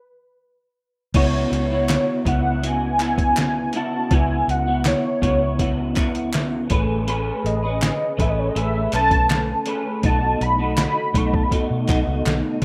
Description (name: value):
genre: indie pop, bedroom pop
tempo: 81 BPM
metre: 4/4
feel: straight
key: C# minor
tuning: A4 = 440 Hz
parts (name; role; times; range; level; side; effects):
- warm velvety synth lead; melody; 0.0-11.5 s; B4 to C#6; -25 LUFS; equal; analog chorus, slapback echo
- electric guitar through a small old amp; accompaniment; 1.1-12.6 s; B2 to B4; -26 LUFS; equal; ensemble chorus, warbly pitch drift
- vintage muted fingered electric bass; bass; 1.1-12.6 s; A1 to B2; -27 LUFS; equal; none
- trip hop sampler-style drum kit; drums; 1.1-12.6 s; crash cymbal, hi-hat, kick drum, snare drum; -25 LUFS; equal; overdrive
- group handclap; percussion; 1.9-12.4 s; none; -34 LUFS; equal; none
room: light reverb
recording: rough home demo mix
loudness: -21 LUFS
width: mono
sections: 0.0-1.1 A section; 1.1-12.6 B section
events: stop 0.0-1.1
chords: 0.0 N.C.; 1.1 C#m7; 6.7 Amaj9; 10.0 B7